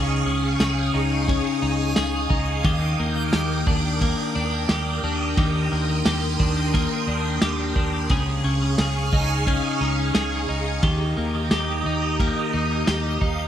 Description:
dream pop; 88 BPM; 4/4; straight; A4 = 438 Hz
phased string machine; sustained chords; 0.0-13.5 s; G4 to Eb6; -28 LUFS; right 3 dB; ensemble chorus, phaser
twelve-string electric guitar; arpeggios; 0.0-13.5 s; Db3 to Ab4; -24 LUFS; left 2 dB; wide subtle chorus, digital delay
vintage muted fingered electric bass; bass; 0.0-13.5 s; Db2 to Eb2; -27 LUFS; right 1 dB
backwards swelling texture; texture; 0.0-2.9, 9.0-13.5 s; F5 to Ab5; -36 LUFS; right 4 dB; built-in reverb, digital delay
vintage drum kit; drums; 0.6-13.4 s; kick drum, ride cymbal, snare drum, tambourine; -24 LUFS; right 1 dB
moderate lush hall reverb, RT60 2.6 s; bright 1980s-style digital production; -20 LUFS; side -10 dB against mid
0.0-13.5 A section
0.0 Dbadd9; 2.6 Ebmaj7; 8.1 Dbadd9; 10.8 Eb

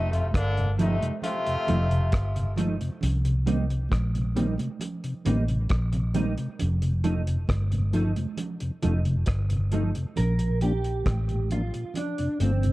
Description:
roots reggae; 67 BPM; 4/4; straight; A4 = 440 Hz
warm horn section; second line; 0.0-2.5 s; C3 to F4; -29 LUFS; left 1 dB
mellow electric guitar; accompaniment; 0.0-12.7 s; F3 to Bb4; -30 LUFS; right 3 dB; analog chorus
vintage muted fingered electric bass; bass; 0.0-12.7 s; F1 to C2; -25 LUFS; equal
mellow tonewheel organ; accompaniment; 0.1-12.7 s; F2 to Eb4; -30 LUFS; left 2 dB; slow rotary speaker
cloth-damped thuddy drum kit; drums; 0.1-12.7 s; hi-hat, kick drum, rim click; -30 LUFS; equal
congas; percussion; 0.3-12.7 s; -35 LUFS; right 4 dB
small room ambience; cassette tape; -24 LUFS; side -18 dB against mid
0.0-10.2 A section; 10.2-12.7 B section
clean electric guitar solo 10.2-12.7
0.0 F7; 3.0 Cm7; 6.6 F7; 10.2 Bb5; 12.0 F

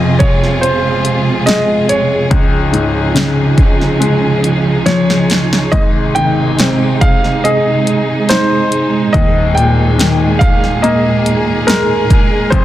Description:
pop ballad; 71 BPM; 4/4; straight; A4 = 442 Hz
warm grand piano; melody; 0.0-12.6 s; Bb4 to G5; -17 LUFS; right 1 dB
clear upright piano; accompaniment; 0.0-12.6 s; Eb1 to Ab4; -15 LUFS; left 3 dB
warm studio string section; sustained chords; 0.0-12.6 s; Bb2 to Ab4; -15 LUFS; right 3 dB
punchy analog drum machine; drums; 0.2-12.6 s; hi-hat, kick drum, snare drum; -13 LUFS; equal
little or no reverb; dense, heavily limited modern master; -10 LUFS; side -13 dB against mid
0.0-12.6 A section
drum fill 4.9-5.7
0.0 Fm; 2.3 Dbadd9; 5.7 Ab; 9.1 Ebsus4

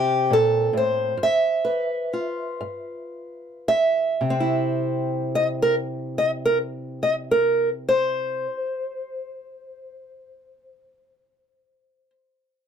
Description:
acoustic country blues, solo or duo; 36-47 BPM (dotted quarters); 12/8; straight; C major; A4 = 440 Hz
fingerpicked acoustic archtop guitar; solo; 0.0-12.1 s; G2 to E5; -21 LUFS; equal
light reverb; -20 LUFS; side -8 dB against mid
0.0-4.2 A section; 4.2-10.9 B section
slowing down 0.0-4.2; steel-string acoustic guitar solo 0.0-4.2
0.0 C5; 1.2 G7; 4.2 C

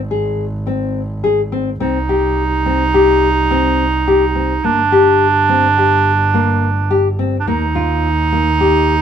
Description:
contemporary instrumental, chamber music in an uneven meter; 106 BPM; 5/4; straight; C minor; A4 = 441 Hz
warm double bass; bass; 0.0-9.0 s; G1 to Eb2; -19 LUFS; equal
nylon-string guitar; arpeggios; 0.1-8.9 s; Bb3 to Ab4; -16 LUFS; left 4 dB
bright clarinet; second line; 1.8-9.0 s; D4 to Eb4; -15 LUFS; right 5 dB
light reverb; close, detailed microphones; -12 LUFS; side -8 dB against mid
0.0-9.0 A section
0.0 Ab; 1.8 Cm; 4.6 Gm; 7.5 Ebadd9

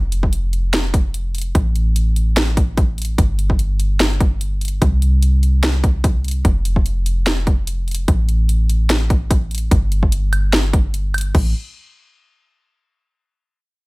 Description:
future bass; 147 BPM; 4/4; swing 54% on 16ths, half-time; A minor; A4 = 440 Hz
warm 808-style bass; bass; 0.0-11.5 s; F1 to C2; -17 LUFS; equal; sidechain pumping
trap drum kit; drums; 0.1-11.4 s; crash cymbal, hi-hat, snare drum, woodblock; -21 LUFS; equal; overdrive, studio reverb
electronic kick drum; drums; 0.2-11.4 s; -16 LUFS; equal; overdrive, studio reverb
little or no reverb; -15 LUFS; side -24 dB against mid
0.0-11.3 A section; 11.3-13.0 B section

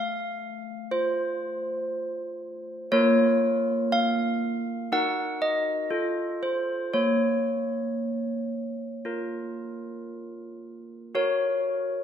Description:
classical, tune for handbells; 57-60 BPM; 4/4; straight; Bb minor; A4 = 440 Hz
handbells; solo; 0.0-12.0 s; A3 to Gb5; -25 LUFS; equal
wet scoring stage reverb, RT60 1.6 s; minimal, uncompressed stereo recording; -24 LUFS; side -9 dB against mid
0.0-11.2 A section
0.0 F/A; 2.9 Bbm; 4.9 Ebm; 5.9 F7; 7.0 Bbm; 11.2 Gb

